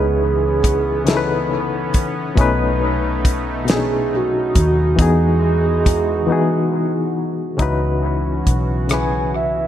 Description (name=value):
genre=slow six-eight R&B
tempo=46 BPM (dotted quarters)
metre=6/8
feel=straight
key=C# minor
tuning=A4 = 440 Hz
part: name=soft octave-layered synth lead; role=melody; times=0.0-9.7 s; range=F#4 to G#5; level=-21 LUFS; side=right 5 dB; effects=chorus, tremolo, analog delay
part: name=barky reed electric piano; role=accompaniment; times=0.0-9.7 s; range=B2 to B4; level=-21 LUFS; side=left 5 dB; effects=overdrive, fast tremolo, analog delay
part: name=chorused pulse-width pad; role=sustained chords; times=0.0-9.7 s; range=E3 to F#4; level=-24 LUFS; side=right 2 dB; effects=none
part: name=vintage muted fingered electric bass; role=bass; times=0.0-9.7 s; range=A#1 to E2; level=-20 LUFS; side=equal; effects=none
part: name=damped 70s drum kit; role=drums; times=0.6-9.1 s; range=hi-hat, kick drum, rim click, snare drum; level=-18 LUFS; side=equal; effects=none
room=light reverb, studio reverb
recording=echo-heavy mix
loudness=-15 LUFS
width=side -11 dB against mid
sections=0.0-7.6 A section; 7.6-9.7 B section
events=break 6.3-7.6; soft synth lead solo 7.6-9.7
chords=0.0 C#m9; 2.4 B9; 5.0 Emaj9; 7.6 C#m11